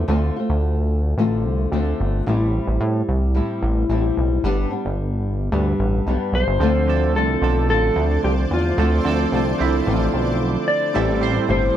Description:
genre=indie pop, bedroom pop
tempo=110 BPM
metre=4/4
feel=straight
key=D dorian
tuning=A4 = 441 Hz
part: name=flamenco guitar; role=accompaniment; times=0.0-11.8 s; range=G2 to F4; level=-23 LUFS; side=left 2 dB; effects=wide subtle chorus, vibrato effect
part: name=chorused synth bass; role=bass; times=0.0-11.7 s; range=G1 to A2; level=-20 LUFS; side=equal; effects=none
part: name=mellow electric guitar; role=melody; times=6.3-11.8 s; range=F4 to D5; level=-22 LUFS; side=left 1 dB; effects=lush chorus
part: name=warm analog keys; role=accompaniment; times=6.6-11.8 s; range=F3 to C5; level=-24 LUFS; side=right 8 dB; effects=chorus
part: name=shimmering ambient pad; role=sustained chords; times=7.7-11.8 s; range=A4 to D6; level=-30 LUFS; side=left 1 dB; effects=chorus, built-in reverb
room=little or no reverb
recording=dry, close 1970s-style studio recording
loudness=-18 LUFS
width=side -11 dB against mid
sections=0.0-6.6 A section; 6.6-11.8 B section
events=none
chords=0.0 Dm7; 2.3 Am7; 4.4 G; 6.6 Dm7; 11.0 Am7

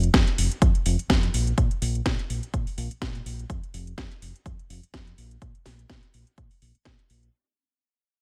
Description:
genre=filtered disco house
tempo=125 BPM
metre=4/4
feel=swing 55% on 16ths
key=unclear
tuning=A4 = 440 Hz
part: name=fingered electric bass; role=bass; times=0.0-7.3 s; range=F1 to Bb2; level=-30 LUFS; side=equal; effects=sidechain pumping, low-pass filter
part: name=house drum kit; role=drums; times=0.0-7.3 s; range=hi-hat, snare drum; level=-31 LUFS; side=equal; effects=studio reverb
part: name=electronic kick drum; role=drums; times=0.1-7.0 s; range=none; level=-26 LUFS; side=equal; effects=studio reverb
room=little or no reverb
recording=none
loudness=-25 LUFS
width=mono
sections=0.0-7.3 A section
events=fade-out 0.0-7.3; filter sweep on fingered electric bass 0.0-7.3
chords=none

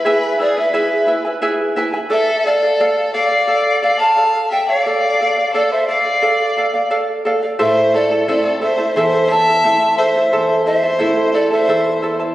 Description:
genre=andean folk, Andean ensemble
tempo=88 BPM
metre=4/4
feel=straight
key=A harmonic minor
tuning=A4 = 440 Hz
part: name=mellow hollow polished pan flute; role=melody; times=0.0-12.2 s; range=D5 to A5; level=-16 LUFS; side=equal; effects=none
part: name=warm violin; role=second line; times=0.0-12.2 s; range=G#4 to F5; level=-20 LUFS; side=equal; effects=slapback echo
part: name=charango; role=accompaniment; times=0.0-12.3 s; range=E4 to A5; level=-18 LUFS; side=right 1 dB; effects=none
part: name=nylon-string guitar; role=accompaniment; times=7.6-12.3 s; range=E2 to E4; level=-25 LUFS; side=equal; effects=none
room=wet concert hall reverb, RT60 2.3 s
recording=recorded on a phone in the room, club reverb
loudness=-13 LUFS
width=side -15 dB against mid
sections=0.0-12.3 A section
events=none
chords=0.0 E; 2.1 Dm; 7.6 Am

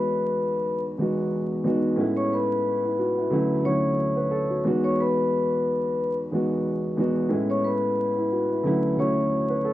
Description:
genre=hip hop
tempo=90 BPM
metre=4/4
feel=swing 55% on 16ths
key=E major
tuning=A4 = 437 Hz
part: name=vibraphone with medium mallets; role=melody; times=0.0-9.7 s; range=B4 to C#6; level=-25 LUFS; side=left 2 dB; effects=high-pass filter, low-pass filter
part: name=dark grand piano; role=accompaniment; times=0.0-9.7 s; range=D2 to B4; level=-24 LUFS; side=right 1 dB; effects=cassette tape, high-pass filter, low-pass filter
room=moderate studio reverb, RT60 0.5 s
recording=vinyl crackle, nothing above 10.9 kHz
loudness=-22 LUFS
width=side -14 dB against mid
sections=0.0-9.7 A section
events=none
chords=0.0 Emaj9; 2.0 Amaj9; 3.3 Dmaj9; 4.7 Emaj9; 7.3 Amaj9; 8.7 Dmaj9

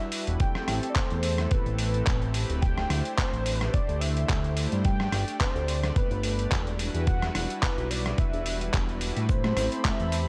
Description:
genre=nu-disco, nu disco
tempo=108 BPM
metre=4/4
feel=swing 55% on 16ths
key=A dorian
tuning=A4 = 440 Hz
part: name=unison lead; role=melody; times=0.0-10.3 s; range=B4 to G5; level=-36 LUFS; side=equal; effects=analog delay
part: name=warm analog pad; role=accompaniment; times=0.0-10.3 s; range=G3 to D5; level=-37 LUFS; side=equal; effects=chorus, tremolo, sidechain pumping
part: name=dusty soul sampler-style drum kit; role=drums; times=0.1-10.2 s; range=handclaps, hi-hat, rim click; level=-35 LUFS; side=equal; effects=overdrive
part: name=fat analog bass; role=bass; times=0.3-10.3 s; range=D1 to A2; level=-31 LUFS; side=equal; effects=tube saturation
part: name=electronic kick drum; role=drums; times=0.4-10.0 s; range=none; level=-29 LUFS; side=equal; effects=overdrive
part: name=warm studio string section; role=sustained chords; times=9.3-10.3 s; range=C4 to B5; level=-41 LUFS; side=equal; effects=sidechain pumping
part: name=tube shaker and congas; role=percussion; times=9.3-10.2 s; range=none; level=-35 LUFS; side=equal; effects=none
room=little or no reverb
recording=dry, gritty hardware recording, cassette tape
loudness=-27 LUFS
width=mono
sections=0.0-10.3 A section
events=none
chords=0.4 Am9; 2.6 D9sus4; 4.8 G; 6.8 Em9; 9.3 Am9

